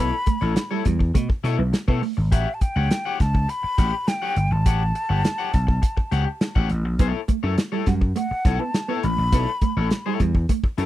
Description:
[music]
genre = funk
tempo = 103 BPM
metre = 4/4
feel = straight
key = unclear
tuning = A4 = 442 Hz
[part]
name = breathy mellow silver concert flute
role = melody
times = 0.0-10.2 s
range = E5 to B5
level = -27 LUFS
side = left 1 dB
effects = none
[part]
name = electric guitar at the edge of break-up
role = accompaniment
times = 0.0-10.9 s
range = E4 to F#5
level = -29 LUFS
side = left 11 dB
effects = none
[part]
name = mellow electric guitar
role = riff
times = 0.0-2.1, 7.0-10.8 s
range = G3 to B3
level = -28 LUFS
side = right 8 dB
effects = tube saturation
[part]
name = vintage slap bass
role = bass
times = 0.0-10.9 s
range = G1 to B2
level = -22 LUFS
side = equal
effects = none
[part]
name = warm soul drum kit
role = drums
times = 0.3-10.9 s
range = hi-hat, kick drum, snare drum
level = -21 LUFS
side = equal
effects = none
[sound]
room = little or no reverb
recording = dry, close 1970s-style studio recording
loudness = -20 LUFS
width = side -14 dB against mid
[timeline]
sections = 0.0-10.9 A section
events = none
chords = 0.0 B9sus4; 2.3 A13; 7.0 B9sus4

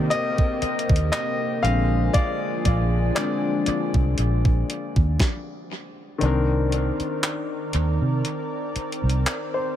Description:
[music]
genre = contemporary R&B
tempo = 59 BPM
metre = 4/4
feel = swing 54% on 16ths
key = C minor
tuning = A4 = 436 Hz
[part]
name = warm baby grand piano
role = accompaniment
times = 0.0-9.8 s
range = D3 to F5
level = -26 LUFS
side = left 4 dB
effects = dub echo
[part]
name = lush unison pad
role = sustained chords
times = 0.0-9.8 s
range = C3 to D5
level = -29 LUFS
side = right 1 dB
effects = chorus
[part]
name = vintage muted fingered electric bass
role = bass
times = 0.0-9.2 s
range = Bb1 to C3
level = -22 LUFS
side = right 1 dB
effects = none
[part]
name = crisp 8-bit digital drum machine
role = drums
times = 0.1-9.5 s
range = handclaps, hi-hat, kick drum, snare drum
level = -24 LUFS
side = equal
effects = dub echo
[sound]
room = light reverb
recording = echo-heavy mix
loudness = -20 LUFS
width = side -11 dB against mid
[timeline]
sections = 0.0-6.2 A section; 6.2-9.8 B section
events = grand piano solo 0.0-6.2; stop 5.2-6.2; kick muted 6.2-9.8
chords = 0.0 Cm7; 1.6 Bb7; 6.2 Cm9

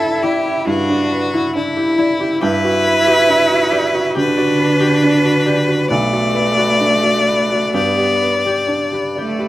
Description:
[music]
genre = neoclassical piano and strings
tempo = 63-70 BPM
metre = 4/4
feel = rubato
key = G major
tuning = A4 = 440 Hz
[part]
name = clear violin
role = melody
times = 0.0-9.4 s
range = E4 to D5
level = -17 LUFS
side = left 3 dB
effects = none
[part]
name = rich cello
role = second line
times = 0.0-9.5 s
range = A3 to E4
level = -17 LUFS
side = right 2 dB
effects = slapback echo
[part]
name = felt-muted upright piano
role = accompaniment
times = 0.0-9.5 s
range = B1 to D5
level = -19 LUFS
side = right 2 dB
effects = none
[part]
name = concert harp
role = arpeggios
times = 0.0-9.5 s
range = E4 to D5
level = -24 LUFS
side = left 3 dB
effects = slapback echo
[sound]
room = little or no reverb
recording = recorded outdoors, with no room sound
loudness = -13 LUFS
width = side -15 dB against mid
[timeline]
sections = 0.0-9.5 A section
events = none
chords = 0.0 Em7/G; 2.4 Gmaj7; 5.9 Bm7; 7.8 G

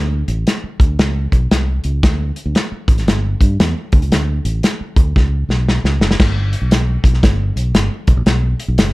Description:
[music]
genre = uptempo 1960s-style soul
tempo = 115 BPM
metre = 4/4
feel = swing 64% on 8ths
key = D major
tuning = A4 = 440 Hz
[part]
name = fingered electric bass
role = bass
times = 0.0-8.9 s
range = F#1 to G2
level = -17 LUFS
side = equal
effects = none
[part]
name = warm soul drum kit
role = drums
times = 0.3-8.9 s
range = crash cymbal, hi-hat, kick drum, snare drum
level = -14 LUFS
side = equal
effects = none
[sound]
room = light reverb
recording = dark, warm production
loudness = -13 LUFS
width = side -21 dB against mid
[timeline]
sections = 0.0-6.2 A section; 6.2-8.9 B section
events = drum fill 5.2-6.2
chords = none

